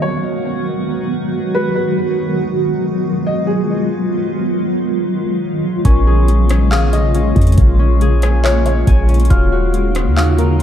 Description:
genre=hip hop, atmospheric cloud-rap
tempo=139 BPM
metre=4/4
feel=half-time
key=unclear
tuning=A4 = 440 Hz
part: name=felt-muted upright piano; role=melody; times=0.0-4.1, 6.7-10.6 s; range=Ab4 to F5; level=-23 LUFS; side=left 1 dB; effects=wide subtle chorus, tape echo
part: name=granular cloud pad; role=sustained chords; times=0.0-10.6 s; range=Db3 to Gb4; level=-17 LUFS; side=equal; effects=built-in reverb, lush chorus
part: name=Celtic harp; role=arpeggios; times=5.8-10.6 s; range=Db4 to Ab5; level=-23 LUFS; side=left 4 dB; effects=tape echo
part: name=clean 808-style bass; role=bass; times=5.8-10.6 s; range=Eb1 to F2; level=-13 LUFS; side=equal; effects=none
part: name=booming analog drum machine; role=drums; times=5.8-10.6 s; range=handclaps, hi-hat, kick drum, rim click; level=-17 LUFS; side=equal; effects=overdrive
part: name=mellow tine electric piano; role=texture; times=5.8-10.6 s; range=Gb4 to F6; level=-28 LUFS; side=equal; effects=lush chorus
room=light reverb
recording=none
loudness=-13 LUFS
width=side -10 dB against mid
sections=0.0-10.6 A section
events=none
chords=0.0 Abm7; 5.8 Bbm7; 9.3 Ebm9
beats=0.24 | 0.67 1.10 1.53 1.97 | 2.40 2.83 3.26 3.69 | 4.12 4.55 4.99 5.42 | 5.85 6.28 6.71 7.14 | 7.58 8.01 8.44 8.87 | 9.30 9.73 10.17 10.60

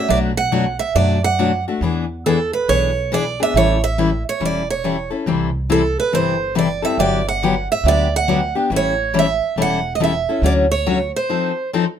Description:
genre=acoustic string swing (jazz manouche)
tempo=139 BPM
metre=4/4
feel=swing 64% on 8ths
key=unclear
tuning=A4 = 440 Hz
part: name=picked steel-string acoustic guitar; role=melody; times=0.0-11.7 s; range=A4 to F#5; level=-19 LUFS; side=right 6 dB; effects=none
part: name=picked steel-string acoustic guitar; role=accompaniment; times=0.0-11.8 s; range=B2 to A4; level=-19 LUFS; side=left 5 dB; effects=none
part: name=upright bass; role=bass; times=0.1-11.1 s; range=E1 to F#2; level=-23 LUFS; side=right 1 dB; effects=none
room=light reverb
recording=minimal, uncompressed stereo recording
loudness=-16 LUFS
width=side -8 dB against mid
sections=0.0-12.0 A section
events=break 11.3-12.0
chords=0.1 Bm7; 1.8 E7; 3.5 A7; 5.3 C6; 7.0 Gmaj7; 8.7 A7; 10.4 Dmaj7; 11.3 F7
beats=| 0.10 0.53 0.96 1.39 | 1.82 2.25 2.68 3.11 | 3.54 3.97 4.40 4.83 | 5.26 5.69 6.12 6.55 | 6.98 7.41 7.84 8.28 | 8.71 9.14 9.57 10.00 | 10.43 10.86 11.29 11.72

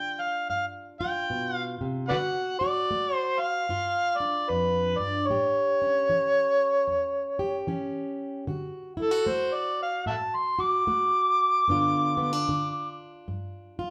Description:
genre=acoustic country blues, solo or duo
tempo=75 BPM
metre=4/4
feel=swing 63% on 8ths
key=unclear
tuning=A4 = 441 Hz
part: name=overdriven harmonica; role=melody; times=0.0-13.0 s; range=A4 to D6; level=-27 LUFS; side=equal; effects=none
part: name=fingerpicked plugged-in steel-string acoustic guitar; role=accompaniment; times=0.0-13.9 s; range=E2 to G4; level=-34 LUFS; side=equal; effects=none
room=wet large studio reverb, RT60 0.9 s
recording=band playing live in one room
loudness=-27 LUFS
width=mono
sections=0.0-8.5 A section; 8.5-13.9 B section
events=harmonica solo 8.5-13.9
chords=0.0 G7; 2.1 D; 3.7 G5; 5.3 A7; 8.5 D; 11.7 G7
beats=0.49 1.29 | 2.09 2.89 3.69 4.49 | 5.29 6.09 6.88 7.68 | 8.48 9.28 10.08 10.87 | 11.67 12.47 13.27

